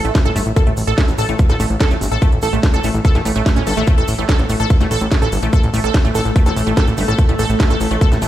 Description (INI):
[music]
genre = psychedelic trance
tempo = 145 BPM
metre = 4/4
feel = straight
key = unclear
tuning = A4 = 440 Hz
[part]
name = wide unison pluck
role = riff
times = 0.0-8.3 s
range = A3 to A4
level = -21 LUFS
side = right 1 dB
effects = auto-pan, sidechain pumping, digital delay
[part]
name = fat analog bass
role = bass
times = 0.0-8.3 s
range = G1 to A1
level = -18 LUFS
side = equal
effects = none
[part]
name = garage drum kit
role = drums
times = 0.0-8.3 s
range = hi-hat, snare drum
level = -25 LUFS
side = equal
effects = none
[part]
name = egg shaker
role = percussion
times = 0.0-8.3 s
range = none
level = -36 LUFS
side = right 3 dB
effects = none
[part]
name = downlifter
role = sound effects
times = 0.0-0.6 s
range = none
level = barely audible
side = none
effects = none
[part]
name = electronic kick drum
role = drums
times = 0.1-8.1 s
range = none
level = -14 LUFS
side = equal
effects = none
[part]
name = evolving wavetable pad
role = sustained chords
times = 5.0-8.3 s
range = A3 to A4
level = -24 LUFS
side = equal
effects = chorus, built-in reverb, sidechain pumping
[sound]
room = digital ambience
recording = played on a big sound system in a bare room, large studio reverb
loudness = -13 LUFS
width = side -13 dB against mid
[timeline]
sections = 0.0-8.3 A section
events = none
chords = none